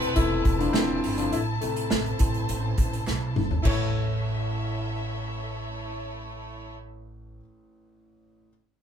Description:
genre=piano-driven pop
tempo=103 BPM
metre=4/4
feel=straight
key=unclear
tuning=A4 = 442 Hz
part: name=clear studio violin section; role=second line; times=0.0-6.7 s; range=A3 to C#5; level=-35 LUFS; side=left 1 dB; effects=none
part: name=warm grand piano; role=accompaniment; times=0.0-8.5 s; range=A1 to C#5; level=-29 LUFS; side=left 2 dB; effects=none
part: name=warm studio string section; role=sustained chords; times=0.0-6.7 s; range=C#4 to A5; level=-36 LUFS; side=equal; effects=none
part: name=upright bass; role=bass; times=0.0-7.4 s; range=E1 to B1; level=-31 LUFS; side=right 1 dB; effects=none
part: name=unplugged drum kit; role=drums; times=0.0-3.8 s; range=crash cymbal, hi-hat, kick drum, snare drum, toms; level=-26 LUFS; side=equal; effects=none
part: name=group handclap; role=percussion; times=0.7-3.9 s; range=none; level=-43 LUFS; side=right 2 dB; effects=none
room=moderate small room reverb, RT60 0.6 s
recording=band playing live in one room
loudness=-24 LUFS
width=side -8 dB against mid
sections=0.0-3.7 A section; 3.7-6.0 B section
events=grand piano solo 0.0-3.7; drum fill 3.1-3.7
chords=0.0 Esus4; 1.3 Am; 3.7 A

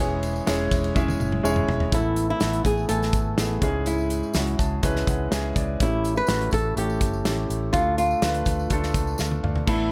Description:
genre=piano-driven pop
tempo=124 BPM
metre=4/4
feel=straight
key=A major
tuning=A4 = 440 Hz
part: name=flamenco guitar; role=melody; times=0.0-9.9 s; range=E4 to B4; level=-29 LUFS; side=equal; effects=none
part: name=warm grand piano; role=accompaniment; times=0.0-9.9 s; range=G#2 to A5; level=-29 LUFS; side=equal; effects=none
part: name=vintage muted fingered electric bass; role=bass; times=0.0-9.9 s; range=E1 to D2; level=-30 LUFS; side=equal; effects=none
part: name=tambourine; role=percussion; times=0.0-9.8 s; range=none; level=-44 LUFS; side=equal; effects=none
part: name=natural country drum kit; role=drums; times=0.2-9.8 s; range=crash cymbal, hi-hat, kick drum, ride cymbal, snare drum, toms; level=-29 LUFS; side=equal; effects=none
room=light reverb, small room reverb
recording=none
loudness=-24 LUFS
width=mono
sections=0.0-1.9 A section; 1.9-9.9 B section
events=drum fill 1.0-1.9, 9.2-9.7; grand piano fill 4.3-5.8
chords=0.0 C#m/E; 1.9 Asus2; 3.6 C#m; 5.8 A7; 7.7 Dm

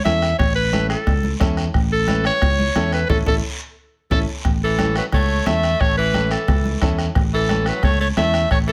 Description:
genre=latin, cumbia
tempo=177 BPM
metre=4/4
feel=straight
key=A major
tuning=A4 = 440 Hz
part: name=clear clarinet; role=melody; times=0.0-8.7 s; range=A4 to E5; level=-23 LUFS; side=equal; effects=plate reverb
part: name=clear upright piano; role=accompaniment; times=0.1-8.4 s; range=C#4 to B4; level=-30 LUFS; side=equal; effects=none
part: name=fingered electric bass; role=bass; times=0.1-8.7 s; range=A1 to E2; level=-24 LUFS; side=equal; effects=none
part: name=bombo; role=percussion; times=0.1-8.7 s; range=none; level=-24 LUFS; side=equal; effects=none
part: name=congas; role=percussion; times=0.1-8.3 s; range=none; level=-29 LUFS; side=equal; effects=none
part: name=guiro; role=percussion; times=0.1-8.7 s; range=none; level=-36 LUFS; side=equal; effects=none
part: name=breathy tenor saxophone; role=second line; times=4.6-8.7 s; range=E3 to A3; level=-30 LUFS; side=equal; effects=none
room=light reverb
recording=none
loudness=-19 LUFS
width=mono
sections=0.0-4.5 A section; 4.5-8.7 A section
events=band accent 3.1-4.5; drum fill 3.6-4.5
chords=0.0 A

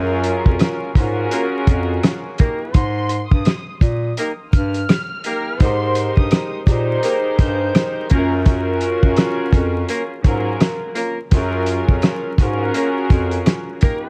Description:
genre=hip hop, boom-bap hip-hop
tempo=84 BPM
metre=4/4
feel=swing 59% on 16ths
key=unclear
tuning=A4 = 440 Hz
part: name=warm studio string section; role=accompaniment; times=0.0-14.1 s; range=Gb3 to C5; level=-24 LUFS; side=equal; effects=cassette tape, high-pass filter, low-pass filter
part: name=mellow bass clarinet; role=bass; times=0.0-13.4 s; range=F2 to Bb2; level=-24 LUFS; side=equal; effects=none
part: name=warm soul drum kit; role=drums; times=0.2-14.0 s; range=hi-hat, kick drum, rim click, snare drum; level=-17 LUFS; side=equal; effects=vintage 12-bit sampler grit
part: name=mellow horn section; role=stabs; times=1.3-14.1 s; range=Bb3 to Bb4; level=-29 LUFS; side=equal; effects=high-pass filter, low-pass filter, analog delay
part: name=warm studio violin section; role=melody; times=2.8-7.7 s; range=C6 to G6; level=-32 LUFS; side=equal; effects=high-pass filter, low-pass filter, analog delay
room=small room ambience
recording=dark, warm production, vinyl crackle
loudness=-18 LUFS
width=mono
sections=0.0-14.1 A section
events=none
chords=0.0 Gbmaj9; 2.7 Abmaj9; 8.1 Gbmaj9

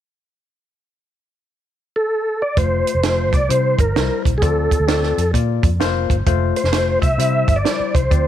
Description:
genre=uptempo 1960s-style soul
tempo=130 BPM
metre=4/4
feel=swing 64% on 8ths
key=F major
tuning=A4 = 438 Hz
part: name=mellow tonewheel organ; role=melody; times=2.0-8.3 s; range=Ab4 to E5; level=-19 LUFS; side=right 1 dB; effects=chorus vibrato
part: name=barky tine electric piano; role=accompaniment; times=2.6-8.3 s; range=G3 to D5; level=-23 LUFS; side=left 14 dB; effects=none
part: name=vintage muted fingered electric bass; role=bass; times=2.6-8.3 s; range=F1 to C3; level=-20 LUFS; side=equal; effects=none
part: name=compact cocktail drum kit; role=drums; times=2.6-8.3 s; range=hi-hat, kick drum, snare drum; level=-20 LUFS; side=right 2 dB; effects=none
room=small room ambience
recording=1960s-style stereo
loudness=-15 LUFS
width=side -11 dB against mid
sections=0.7-2.6 A section; 2.6-8.3 B section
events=none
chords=0.7 N.C.; 2.6 F; 3.5 C; 4.4 Dm7; 5.3 Bb; 6.3 F; 7.2 C

